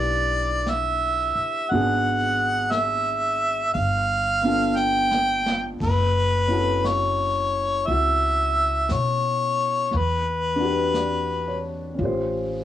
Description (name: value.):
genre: jazz ballad.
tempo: 58 BPM.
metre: 4/4.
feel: swing 66% on 8ths.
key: unclear.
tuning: A4 = 439 Hz.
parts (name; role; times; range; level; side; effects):
clear harmonica; melody; 0.0-11.6 s; B4 to G5; -22 LUFS; equal; cassette tape.
warm upright piano; accompaniment; 0.0-12.6 s; B3 to D5; -28 LUFS; left 1 dB; cassette tape.
upright bass; bass; 0.0-12.6 s; F#1 to B2; -27 LUFS; left 1 dB; none.
jazz brush drum kit; drums; 0.7-12.6 s; brushed snare drum, hi-hat, kick drum, ride cymbal, snare drum; -35 LUFS; equal; cassette tape.
room: light reverb.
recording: home recording on cassette, small room ambience.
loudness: -20 LUFS.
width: side -11 dB against mid.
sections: 0.0-12.6 A section.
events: drum fill 4.8-5.8.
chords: 0.0 G69; 1.7 G#m7b5; 3.7 G9; 5.8 F#m7; 9.9 Em9; 12.0 A7alt.